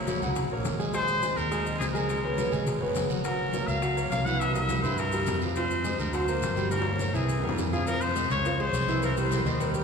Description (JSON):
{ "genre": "latin, salsa", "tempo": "208 BPM", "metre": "4/4", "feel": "straight", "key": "unclear", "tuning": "A4 = 436 Hz", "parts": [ { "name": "clear trumpet", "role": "melody", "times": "0.0-9.7 s", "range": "E4 to Gb5", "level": "-30 LUFS", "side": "left 2 dB", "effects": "none" }, { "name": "clear concert grand piano", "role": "accompaniment", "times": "0.0-9.8 s", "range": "Eb3 to Ab5", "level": "-30 LUFS", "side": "right 2 dB", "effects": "none" }, { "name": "fingered electric bass", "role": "bass", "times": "0.0-9.8 s", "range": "Gb1 to G2", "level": "-31 LUFS", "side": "equal", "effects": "none" }, { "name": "bongos and cowbell", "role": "percussion", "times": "0.1-9.8 s", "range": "none", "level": "-37 LUFS", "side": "left 5 dB", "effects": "none" }, { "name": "congas", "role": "percussion", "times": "0.1-9.8 s", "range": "none", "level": "-36 LUFS", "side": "left 2 dB", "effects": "none" }, { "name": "guiro", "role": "percussion", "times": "0.1-9.8 s", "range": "none", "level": "-43 LUFS", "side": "right 4 dB", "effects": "none" }, { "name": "maracas", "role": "percussion", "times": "0.1-9.8 s", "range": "none", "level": "-44 LUFS", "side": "left 6 dB", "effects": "none" } ], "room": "wet cathedral reverb, RT60 4.4 s", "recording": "recorded in a church or concert hall, small room ambience", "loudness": "-25 LUFS", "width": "side -6 dB against mid", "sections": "0.0-7.9 A section; 7.9-9.8 B section", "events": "drum fill 6.7-7.9", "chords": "0.0 Gb9; 0.9 Ab; 2.1 Db5; 3.2 Gbmaj7; 4.4 C7; 5.6 Fm; 6.1 Daug7; 6.7 Gdim; 7.3 C7b13; 7.9 Fm; 8.4 Db; 9.0 C7", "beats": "0.07 0.36 0.65 | 0.94 1.23 1.52 1.80 | 2.09 2.38 2.67 2.96 | 3.25 3.54 3.83 4.12 | 4.40 4.69 4.98 5.27 | 5.56 5.85 6.14 6.43 | 6.71 7.00 7.29 7.58 | 7.87 8.16 8.45 8.74 | 9.03 9.32 9.61" }